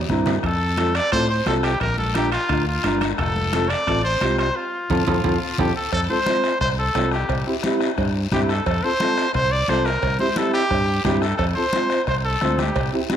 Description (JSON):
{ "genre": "latin, cumbia", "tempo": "175 BPM", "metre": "4/4", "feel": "straight", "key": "F major", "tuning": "A4 = 441 Hz", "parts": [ { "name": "fingered electric bass", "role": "bass", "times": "0.0-12.9 s", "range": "F1 to A2", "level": "-24 LUFS", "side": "equal", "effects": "none" }, { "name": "mellow electric guitar", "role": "accompaniment", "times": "0.1-13.2 s", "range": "C4 to C5", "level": "-24 LUFS", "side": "equal", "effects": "none" }, { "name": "bombo", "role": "percussion", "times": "0.1-13.2 s", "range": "none", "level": "-29 LUFS", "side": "left 5 dB", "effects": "none" }, { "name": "congas", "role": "percussion", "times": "0.1-13.2 s", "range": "none", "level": "-30 LUFS", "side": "equal", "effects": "none" }, { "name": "guiro", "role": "percussion", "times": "0.1-13.2 s", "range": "none", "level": "-34 LUFS", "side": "left 10 dB", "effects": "none" }, { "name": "timbales and cowbell", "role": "percussion", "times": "0.3-12.9 s", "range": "none", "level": "-31 LUFS", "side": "right 10 dB", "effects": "none" }, { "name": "bright trumpet", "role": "melody", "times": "0.5-12.9 s", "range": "F4 to D5", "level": "-23 LUFS", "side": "equal", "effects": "slapback echo" } ], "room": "moderate echo chamber reverb, RT60 1.4 s, studio reverb", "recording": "1960s-style stereo with parts hard left and right", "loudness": "-18 LUFS", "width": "side -9 dB against mid", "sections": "0.0-5.9 A section; 5.9-13.2 B section", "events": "drum fill 0.0-0.4, 4.9-5.9; band accent 4.6-5.9", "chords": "0.4 F; 1.8 Bb; 3.2 F; 7.3 C; 8.7 F; 10.0 C; 11.4 F" }